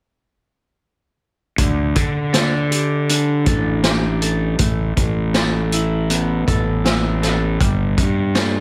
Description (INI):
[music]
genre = quiet-loud alternative rock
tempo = 80 BPM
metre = 4/4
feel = straight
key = unclear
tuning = A4 = 439 Hz
[part]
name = electric guitar at the edge of break-up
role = arpeggios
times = 1.6-8.6 s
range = D3 to A4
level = -26 LUFS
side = equal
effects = slapback echo
[part]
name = fuzz fingered electric bass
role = bass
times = 1.6-8.6 s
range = G1 to D3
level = -22 LUFS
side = equal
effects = overdrive
[part]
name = raw garage drum kit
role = drums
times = 1.6-8.5 s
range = hi-hat, kick drum, snare drum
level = -22 LUFS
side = equal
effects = none
[sound]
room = light reverb, studio ambience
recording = none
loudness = -18 LUFS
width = mono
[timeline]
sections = 1.6-8.6 A section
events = none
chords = 1.6 Dsus4; 4.6 Asus2; 7.6 Gadd9